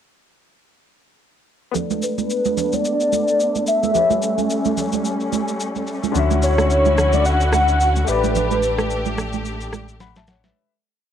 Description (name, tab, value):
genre	amapiano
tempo	109 BPM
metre	4/4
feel	swing 58% on 16ths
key	unclear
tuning	A4 = 440 Hz
part	clear grand piano	accompaniment	1.7-10.7 s	D3 to B5	-29 LUFS	left 11 dB	low-pass filter, cassette tape
part	bright studio string section	sustained chords	1.7-10.5 s	D3 to G4	-24 LUFS	left 2 dB	low-pass filter, cassette tape
part	electronic shaker, rim click and snare drum	drums	1.7-10.5 s	none	-28 LUFS	left 1 dB	cassette tape
part	congas	percussion	1.8-10.5 s	none	-26 LUFS	right 16 dB	none
part	warm velvety synth lead	melody	2.0-9.2 s	B4 to F#5	-19 LUFS	left 1 dB	chorus, low-pass filter, cassette tape, analog delay
part	sub bass with octave	bass	6.2-10.5 s	A1 to D2	-21 LUFS	equal	none
room	light reverb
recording	home recording on cassette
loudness	-17 LUFS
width	side -9 dB against mid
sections	1.7-10.6 breakdown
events	filter sweep 1.7-10.6; fade-out 8.4-10.6; drum fill 10.0-10.6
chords	1.7 Bm7; 4.0 A9; 6.2 Dmaj9; 8.1 A9sus4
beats	| 1.75 2.30 2.85 3.40 | 3.95 4.50 5.05 5.60 | 6.15 6.70 7.25 7.80 | 8.35 8.90 9.45 10.01